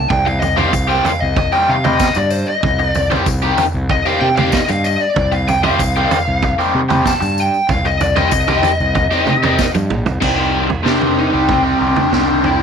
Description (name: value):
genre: psychedelic rock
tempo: 95 BPM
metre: 4/4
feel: straight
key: C minor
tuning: A4 = 440 Hz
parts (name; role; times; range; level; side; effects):
- fuzz lead guitar; melody; 0.0-12.6 s; C4 to A5; -17 LUFS; left 1 dB; distortion, slapback echo
- fuzz fingered electric bass; bass; 0.0-12.6 s; Bb1 to C3; -20 LUFS; equal; overdrive
- vintage drum kit; drums; 0.1-12.6 s; crash cymbal, kick drum, snare drum, toms; -19 LUFS; right 3 dB; none
- raw garage guitar; riff; 0.3-12.6 s; C3 to G4; -17 LUFS; left 1 dB; overdrive, phaser
- tambourine; percussion; 0.3-10.1 s; none; -34 LUFS; left 15 dB; none
room: light reverb, small room ambience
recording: 1960s-style stereo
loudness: -13 LUFS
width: side -7 dB against mid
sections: 0.0-10.2 A section; 10.2-12.6 B section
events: lead electric guitar solo 0.0-10.2; drum fill 9.6-10.2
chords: 0.0 Cm